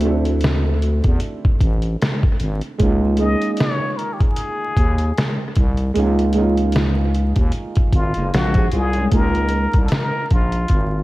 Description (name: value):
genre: lo-fi hip hop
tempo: 76 BPM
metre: 4/4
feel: swing 58% on 16ths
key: Db major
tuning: A4 = 440 Hz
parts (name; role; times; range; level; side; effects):
- dark upright piano; accompaniment; 0.0-11.0 s; Ab3 to A4; -24 LUFS; right 3 dB; cassette tape, low-pass filter
- growling FM bass; bass; 0.0-11.0 s; Gb1 to E2; -19 LUFS; equal; none
- trip hop sampler-style drum kit; drums; 0.0-10.9 s; hi-hat, kick drum, snare drum; -18 LUFS; equal; none
- trumpet with plunger mute; melody; 3.2-11.0 s; F4 to Eb5; -24 LUFS; left 2 dB; low-pass filter, analog delay
- nylon-string guitar; second line; 8.2-9.3 s; Ab3 to Ab4; -26 LUFS; left 1 dB; low-pass filter, analog delay
room: light reverb, studio ambience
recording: echo-heavy mix, vinyl crackle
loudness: -16 LUFS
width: side -18 dB against mid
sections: 0.0-9.1 A section; 9.1-11.0 B section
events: none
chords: 0.0 D9; 2.8 Db69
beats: 0.43 1.22 2.01 | 2.80 3.59 4.38 5.17 | 5.96 6.75 7.54 8.33 | 9.12 9.90 10.70